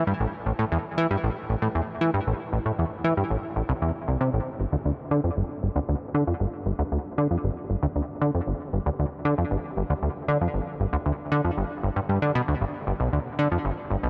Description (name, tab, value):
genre	ambient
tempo	116 BPM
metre	4/4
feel	straight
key	unclear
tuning	A4 = 442 Hz
part	plucky analog bass	solo	0.0-14.1 s	G1 to E3	-26 LUFS	equal	tape echo
room	moderate huge ambient reverb, RT60 9.3 s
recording	none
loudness	-27 LUFS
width	mono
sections	0.0-14.1 A section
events	none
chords	none